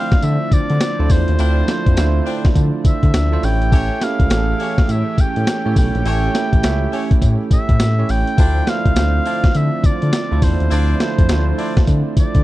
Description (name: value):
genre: R&B, new jack swing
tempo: 103 BPM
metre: 4/4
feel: swing 63% on 16ths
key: unclear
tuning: A4 = 440 Hz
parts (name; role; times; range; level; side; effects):
- warm oboe; melody; 0.0-12.4 s; C5 to G5; -24 LUFS; left 1 dB; none
- bell-like tine electric piano; accompaniment; 0.0-12.4 s; E3 to E5; -23 LUFS; right 7 dB; none
- lush unison pad; sustained chords; 0.0-12.4 s; D3 to G4; -28 LUFS; left 2 dB; chorus
- mellow horn section; stabs; 0.0-11.8 s; C4 to D5; -28 LUFS; left 2 dB; none
- boom bap sampler-style drum kit; drums; 0.1-12.4 s; hi-hat, kick drum, snare drum, tambourine; -15 LUFS; equal; none
- smooth synth bass; bass; 0.2-12.4 s; A1 to D3; -17 LUFS; equal; none
room: little or no reverb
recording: dry, close 1970s-style studio recording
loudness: -14 LUFS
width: side -16 dB against mid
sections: 0.0-12.4 A section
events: none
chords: 0.0 Dm9; 3.4 A7; 8.4 Dm9